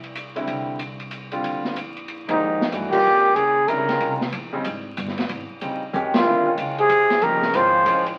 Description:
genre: modal jazz.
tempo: 187 BPM.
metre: 3/4.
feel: swing 64% on 8ths.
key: Eb mixolydian.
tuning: A4 = 440 Hz.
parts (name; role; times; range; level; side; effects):
upright bass; bass; 0.0-8.2 s; G1 to G2; -39 LUFS; equal; none.
open jazz drum kit; drums; 0.0-8.1 s; crash cymbal, hi-hat, kick drum, ride cymbal, snare drum, toms; -32 LUFS; equal; none.
clear concert grand piano; accompaniment; 0.4-8.0 s; Db3 to G4; -29 LUFS; equal; none.
breathy trumpet; melody; 2.3-8.1 s; Eb4 to C5; -20 LUFS; equal; none.
growling tenor saxophone; second line; 2.3-8.1 s; Ab2 to F3; -31 LUFS; equal; none.
room: moderate studio reverb, RT60 0.9 s.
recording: very old 78 rpm record, vinyl crackle.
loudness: -21 LUFS.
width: mono.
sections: 0.0-2.4 A section; 2.4-8.2 B section.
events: band accent 2.2, 2.9, 6.1; drum fill 5.9-6.3.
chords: 0.0 Cadd9; 1.4 Bb; 2.4 Eb7sus4; 6.3 Bbmadd9.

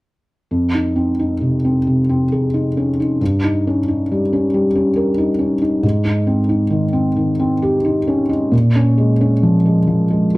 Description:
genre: classical.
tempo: 67 BPM.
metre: 3/4.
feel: rubato.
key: unclear.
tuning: A4 = 440 Hz.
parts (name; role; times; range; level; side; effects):
felt-muted upright piano; accompaniment; 0.5-10.4 s; F2 to Bb4; -14 LUFS; equal; none.
room: wet studio reverb, RT60 0.5 s.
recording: dark, warm production.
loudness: -14 LUFS.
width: side -20 dB against mid.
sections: 0.5-10.4 A section.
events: none.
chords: 0.5 Fm7; 3.2 Eb7/G; 5.8 Abmaj7; 8.5 Bbm7.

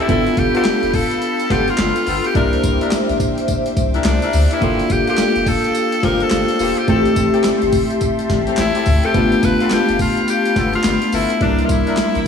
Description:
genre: R&B, new jack swing.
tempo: 106 BPM.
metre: 4/4.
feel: swing 62% on 16ths.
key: unclear.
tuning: A4 = 442 Hz.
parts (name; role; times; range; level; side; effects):
raspy tenor saxophone; melody; 0.0-12.3 s; D4 to B4; -20 LUFS; left 2 dB; tape echo, slapback echo.
bell-like tine electric piano; accompaniment; 0.0-12.3 s; G3 to C5; -20 LUFS; right 1 dB; slapback echo.
phased analog pad; sustained chords; 0.0-12.3 s; G4 to D6; -24 LUFS; left 4 dB; phaser, chorus.
mellow horn section; stabs; 0.0-12.0 s; Bb3 to Bb4; -24 LUFS; left 4 dB; slapback echo.
round analog bass; bass; 0.1-12.3 s; E1 to D2; -22 LUFS; left 1 dB; none.
breakbeat sampler-style drum kit; drums; 0.1-12.3 s; handclaps, hi-hat, kick drum, snare drum, tambourine; -21 LUFS; left 1 dB; overdrive.
room: moderate lush hall reverb, RT60 2.6 s.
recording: big arena sound, small room ambience.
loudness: -14 LUFS.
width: side -7 dB against mid.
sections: 0.0-12.3 A section.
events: none.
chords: 0.1 G9; 2.4 C9; 4.6 Gm7; 6.9 Am7; 9.1 G9; 11.4 C9.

